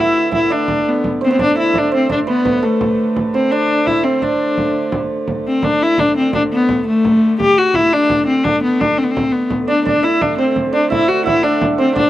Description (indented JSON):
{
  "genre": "medieval dance",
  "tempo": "113 BPM (dotted quarters)",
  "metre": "6/8",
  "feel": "straight",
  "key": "D mixolydian",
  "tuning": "A4 = 445 Hz",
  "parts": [
    { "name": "warm viola da gamba", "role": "melody", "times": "0.0-12.1 s", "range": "A3 to G4", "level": "-14 LUFS", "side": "left 1 dB", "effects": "none" },
    { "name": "hammered dulcimer", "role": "second line", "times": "0.0-6.7, 9.7-12.1 s", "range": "A4 to F#5", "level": "-21 LUFS", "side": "right 6 dB", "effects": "slapback echo" },
    { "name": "dark hurdy-gurdy", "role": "drone", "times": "0.0-12.1 s", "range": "D3 to A3", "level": "-25 LUFS", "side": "right 1 dB", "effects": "stereo widening" },
    { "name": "frame drum", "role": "percussion", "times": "0.1-12.1 s", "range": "none", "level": "-24 LUFS", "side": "right 2 dB", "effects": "none" }
  ],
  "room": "light reverb",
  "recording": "recorded outdoors, with no room sound",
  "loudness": "-13 LUFS",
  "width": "side -14 dB against mid",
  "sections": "0.0-5.3 A section; 5.3-12.1 A section",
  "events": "none",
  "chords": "none",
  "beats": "0.49 | 1.03 1.56 | 2.09 2.62 | 3.15 3.68 | 4.21 4.74 | 5.27 5.80 | 6.33 6.86 | 7.39 7.92 | 8.45 8.97 | 9.50 10.03 | 10.56 11.08 | 11.61"
}